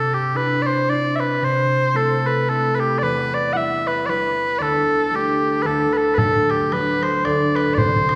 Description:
celtic folk, Celtic waltz; 113 BPM; 3/4; swing 58% on 8ths; A4 = 440 Hz
mellow small bagpipes; melody; 0.0-8.2 s; G4 to F#5; -22 LUFS; equal
concert harp; accompaniment; 0.0-8.2 s; C2 to E4; -24 LUFS; equal
bodhran; percussion; 6.2-8.2 s; -27 LUFS; equal
wet recital hall reverb, RT60 1.7 s; recorded in a church or concert hall; -20 LUFS; mono
0.0-8.2 A section
0.0 Cadd9; 1.4 Am/C; 3.0 Em; 4.6 Dsus4; 5.7 D

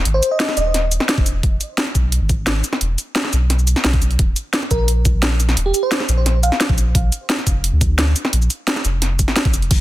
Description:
liquid drum and bass; 174 BPM; 4/4; straight; A4 = 443 Hz
warm sub bass; bass; 0.0-9.8 s; Eb1 to D2; -17 LUFS; equal
bell-like FM electric piano; melody; 0.1-0.8, 4.7-6.7 s; G4 to F5; -22 LUFS; right 2 dB; chorus, tremolo, digital delay
drum and bass drum kit; drums; 0.1-9.8 s; crash cymbal, hi-hat, ride cymbal, shaker, snare drum; -19 LUFS; equal; overdrive
electronic kick drum; drums; 1.2-9.8 s; -18 LUFS; equal; overdrive
lush unison pad; sustained chords; 9.7-9.8 s; Ab3 to Bb4; -46 LUFS; right 1 dB
light reverb, digital ambience; dense, heavily limited modern master; -15 LUFS; side -16 dB against mid
0.0-9.8 A section
0.0 Ab5; 1.3 E; 4.2 Eb5; 6.8 Bb

